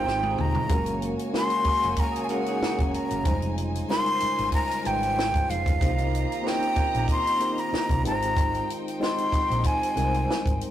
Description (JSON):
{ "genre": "lush 1970s-style soul", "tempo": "94 BPM", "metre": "4/4", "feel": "swing 54% on 16ths", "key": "Ab major", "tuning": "A4 = 440 Hz", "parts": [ { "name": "breathy jazz flute", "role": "melody", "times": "0.0-10.6 s", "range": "F5 to C6", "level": "-26 LUFS", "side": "equal", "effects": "slapback echo" }, { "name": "warm studio violin section", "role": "second line", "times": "0.0-10.7 s", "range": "Eb4 to Bb5", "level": "-36 LUFS", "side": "equal", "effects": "none" }, { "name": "mellow reed electric piano", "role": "accompaniment", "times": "0.0-10.7 s", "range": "G3 to C5", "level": "-31 LUFS", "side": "left 1 dB", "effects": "fast tremolo" }, { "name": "mellow French horn section", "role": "sustained chords", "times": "0.0-10.7 s", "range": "Db3 to F4", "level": "-36 LUFS", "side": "right 1 dB", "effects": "none" }, { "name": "electric guitar through a small old amp", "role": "riff", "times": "0.0-3.2 s", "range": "Db4 to C5", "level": "-34 LUFS", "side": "right 4 dB", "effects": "none" }, { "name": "hollow-body short-scale fingered electric bass", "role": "bass", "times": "0.0-10.6 s", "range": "Eb1 to C2", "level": "-30 LUFS", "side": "equal", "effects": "none" }, { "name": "compact cocktail drum kit", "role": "drums", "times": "0.1-10.7 s", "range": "hi-hat, kick drum, snare drum, toms", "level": "-28 LUFS", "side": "equal", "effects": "none" }, { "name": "celesta", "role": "texture", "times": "0.1-3.6, 9.0-10.5 s", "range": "Eb5 to G6", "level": "-41 LUFS", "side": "equal", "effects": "none" } ], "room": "moderate small room reverb, RT60 0.5 s", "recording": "rough rehearsal-room recording, tube saturation", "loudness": "-22 LUFS", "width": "side -11 dB against mid", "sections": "0.0-10.7 A section", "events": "drum fill 0.1-0.7", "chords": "0.0 Abmaj7; 0.7 Gbmaj9; 3.3 Fm9; 5.8 Cm7; 8.0 Abmaj7", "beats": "0.07 | 0.70 1.34 1.98 2.62 | 3.26 3.90 4.53 5.17 | 5.81 6.45 7.09 7.72 | 8.36 9.00 9.64 10.28" }